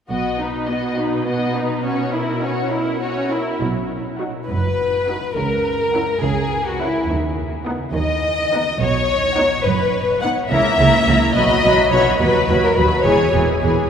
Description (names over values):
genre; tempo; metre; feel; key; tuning
quick classical-period movement for string orchestra; 70 BPM (dotted quarters); 6/8; straight; B major; A4 = 438 Hz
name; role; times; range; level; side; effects
warm studio violin section; melody; 0.1-13.9 s; A#4 to B5; -26 LUFS; left 5 dB; none
warm studio violin section; second line; 0.1-13.3 s; D#4 to F#5; -19 LUFS; left 2 dB; none
rich studio viola section; accompaniment; 0.1-13.9 s; E3 to G#4; -23 LUFS; right 1 dB; none
warm studio cello section; bass; 0.1-13.7 s; D#2 to D#3; -25 LUFS; right 3 dB; none
warm studio double bass section; bass; 0.1-0.7, 3.6-13.7 s; E1 to D#2; -24 LUFS; right 2 dB; none
room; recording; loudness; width
wet cathedral reverb, RT60 6.6 s; recorded in a church or concert hall; -16 LUFS; side -7 dB against mid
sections
0.1-3.6 A section; 3.6-13.9 B section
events
none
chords
0.1 B; 1.8 F#7/B; 3.6 B; 5.4 F#7/C#; 7.1 B/D#; 8.8 B; 10.5 A#dim; 11.4 B; 12.2 B/D#; 13.1 E6